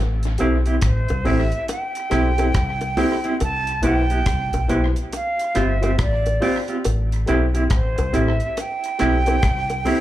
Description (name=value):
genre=roots reggae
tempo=70 BPM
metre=4/4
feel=swing 62% on 16ths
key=A minor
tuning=A4 = 436 Hz
part: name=deep dub fingered electric bass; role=bass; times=0.0-9.8 s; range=G1 to C2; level=-21 LUFS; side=equal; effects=none
part: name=deep reggae drum kit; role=drums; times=0.2-10.0 s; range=hi-hat, kick drum, rim click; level=-26 LUFS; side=equal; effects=tape echo
part: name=clean electric guitar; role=accompaniment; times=0.4-10.0 s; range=B3 to G4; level=-23 LUFS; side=right 2 dB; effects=tremolo, tape echo, slapback echo
part: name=reed electric piano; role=stabs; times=0.4-10.0 s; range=E4 to C5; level=-28 LUFS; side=left 5 dB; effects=fast tremolo, slapback echo
part: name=bongos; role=percussion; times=0.4-10.0 s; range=none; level=-28 LUFS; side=left 1 dB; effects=slapback echo
part: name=silver concert flute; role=melody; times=0.8-10.0 s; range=C5 to A5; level=-25 LUFS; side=right 2 dB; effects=tape echo, slapback echo
room=little or no reverb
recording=live gig heard through the venue's PA, club ambience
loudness=-18 LUFS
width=side -14 dB against mid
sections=0.0-10.0 A section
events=none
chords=0.0 Am7; 3.4 Cmaj7; 5.1 G7sus4; 6.8 Am7